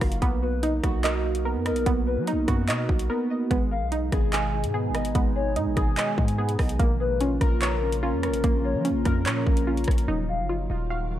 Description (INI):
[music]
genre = hip hop, drill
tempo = 146 BPM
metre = 4/4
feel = half-time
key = Eb minor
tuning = A4 = 440 Hz
[part]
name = warbly lo-fi synth keys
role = accompaniment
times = 0.0-11.2 s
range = Gb3 to Bb5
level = -29 LUFS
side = right 1 dB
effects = chorus, phaser
[part]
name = warbly dusty pluck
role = arpeggios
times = 0.0-11.2 s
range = Bb3 to F5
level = -30 LUFS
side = right 2 dB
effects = chorus, digital delay
[part]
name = hard-hitting 808-style bass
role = bass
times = 0.0-11.2 s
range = Eb1 to F#3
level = -28 LUFS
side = equal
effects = none
[part]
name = drill drum kit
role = drums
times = 0.0-10.1 s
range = handclaps, hi-hat, kick drum, rim click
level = -26 LUFS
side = equal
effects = none
[part]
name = hollow clarinet-like synth lead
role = second line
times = 0.4-10.5 s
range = A#4 to F5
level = -33 LUFS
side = left 5 dB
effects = chorus, digital delay
[part]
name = glassy FM pad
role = sustained chords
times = 4.3-11.2 s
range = Cb3 to F5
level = -35 LUFS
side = equal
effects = ensemble chorus, built-in reverb
[sound]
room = digital ambience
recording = dark, warm production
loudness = -22 LUFS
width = side -12 dB against mid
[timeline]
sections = 0.0-10.1 A section; 10.1-11.2 B section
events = break 3.1-3.5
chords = 0.2 Bmaj7; 3.5 Abm; 6.8 Bbm; 10.1 Ebmadd9